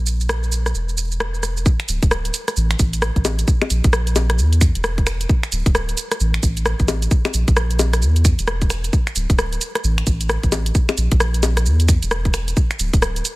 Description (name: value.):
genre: UK garage, two-step garage.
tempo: 132 BPM.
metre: 4/4.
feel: swing 62% on 16ths.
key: unclear.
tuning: A4 = 441 Hz.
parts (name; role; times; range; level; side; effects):
soft dub sub bass; bass; 0.0-13.2 s; D1 to E2; -19 LUFS; equal; none.
garage drum kit; drums; 0.1-13.4 s; bongos, finger snaps, hi-hat, rim click, shaker; -22 LUFS; equal; soft clipping on snare.
electronic kick drum; drums; 1.7-13.0 s; none; -17 LUFS; equal; none.
room: little or no reverb.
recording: dense, heavily limited modern master.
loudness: -16 LUFS.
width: side -20 dB against mid.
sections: 0.0-1.7 A section; 1.7-13.4 B section.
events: drop 1.7-13.4.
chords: none.